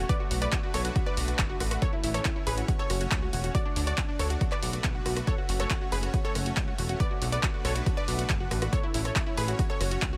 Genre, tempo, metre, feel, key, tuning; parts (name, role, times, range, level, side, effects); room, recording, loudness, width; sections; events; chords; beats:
uplifting trance; 139 BPM; 4/4; straight; A4 = 440 Hz
unison pluck; melody; 0.0-10.2 s; D4 to D5; -37 LUFS; equal; sidechain pumping, digital delay
warm baby grand piano; second line; 0.0-10.2 s; D5 to D6; -42 LUFS; equal; sidechain pumping, tape echo
supersaw pad; sustained chords; 0.0-10.2 s; A3 to D5; -40 LUFS; equal; sidechain pumping
plucky analog bass; bass; 0.0-10.2 s; E1 to D2; -34 LUFS; equal; sidechain pumping
electronic kick drum; drums; 0.1-10.1 s; -32 LUFS; equal; overdrive
punchy analog drum machine; drums; 0.1-10.1 s; handclaps, hi-hat, rim click; -36 LUFS; equal; overdrive
little or no reverb; -28 LUFS; mono
0.0-10.2 A section
0.1 Bm7; 1.8 A; 2.7 F#m; 3.5 D; 4.4 Bm7; 5.3 F#m; 7.0 Bm7; 8.7 A; 9.6 F#m
| 0.09 0.53 0.96 1.39 | 1.82 2.25 2.68 3.12 | 3.55 3.98 4.41 4.84 | 5.27 5.71 6.14 6.57 | 7.00 7.43 7.86 8.29 | 8.73 9.16 9.59 10.02